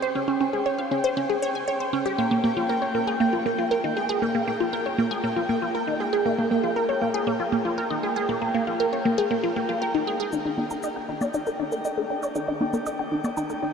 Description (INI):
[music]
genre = ambient, sequencer-driven space music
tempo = 118 BPM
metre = 4/4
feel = straight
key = Eb major from 10.3 s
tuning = A4 = 436 Hz
[part]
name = resonant blip pluck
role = riff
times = 0.0-13.7 s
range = Bb3 to Ab5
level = -23 LUFS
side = equal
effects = phaser, analog delay
[part]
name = pulsing gated texture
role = texture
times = 0.0-13.7 s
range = G5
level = -31 LUFS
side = left 1 dB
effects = chorus, built-in reverb
[part]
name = cabasa and congas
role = percussion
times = 10.3-13.6 s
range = none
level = -33 LUFS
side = right 1 dB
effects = analog delay
[sound]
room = wet shimmer reverb, RT60 7.8 s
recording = dark, warm production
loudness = -23 LUFS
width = side -6 dB against mid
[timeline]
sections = 0.0-10.3 A section; 10.3-13.7 B section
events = filter sweep on synth arpeggio sound 10.3-13.7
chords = 0.0 Dbmaj7(no3); 2.2 Bb5; 10.3 Ebmaj7